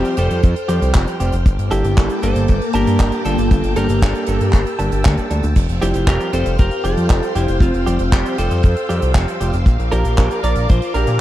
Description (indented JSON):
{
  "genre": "italo disco",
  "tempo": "117 BPM",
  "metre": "4/4",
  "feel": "straight",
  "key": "F major",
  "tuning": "A4 = 439 Hz",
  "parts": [
    { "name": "lightly driven lead guitar", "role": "melody", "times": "0.0-11.2 s", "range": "C4 to D5", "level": "-22 LUFS", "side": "equal", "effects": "tape echo" },
    { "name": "string machine, full ensemble", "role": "sustained chords", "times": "0.0-11.2 s", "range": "Bb3 to F6", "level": "-24 LUFS", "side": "equal", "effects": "ensemble chorus" },
    { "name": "direct-recorded clean electric guitar", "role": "stabs", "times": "0.0-11.2 s", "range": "F3 to A5", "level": "-24 LUFS", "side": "right 3 dB", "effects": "none" },
    { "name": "fat analog bass", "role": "bass", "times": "0.0-11.2 s", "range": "F1 to Bb2", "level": "-18 LUFS", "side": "equal", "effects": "none" },
    { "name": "damped 70s drum kit", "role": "drums", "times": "0.0-11.2 s", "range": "cabasa, crash cymbal, handclaps, hi-hat", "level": "-27 LUFS", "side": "right 1 dB", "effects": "none" },
    { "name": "kick drum", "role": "drums", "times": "0.4-10.8 s", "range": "none", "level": "-13 LUFS", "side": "equal", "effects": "none" }
  ],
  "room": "little or no reverb",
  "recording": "dry, close 1970s-style studio recording",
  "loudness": "-14 LUFS",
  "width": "side -14 dB against mid",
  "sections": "0.0-11.2 A section",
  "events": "none",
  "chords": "0.0 Fsus2; 1.5 Gmadd9; 5.6 Fsus2; 9.7 Bb"
}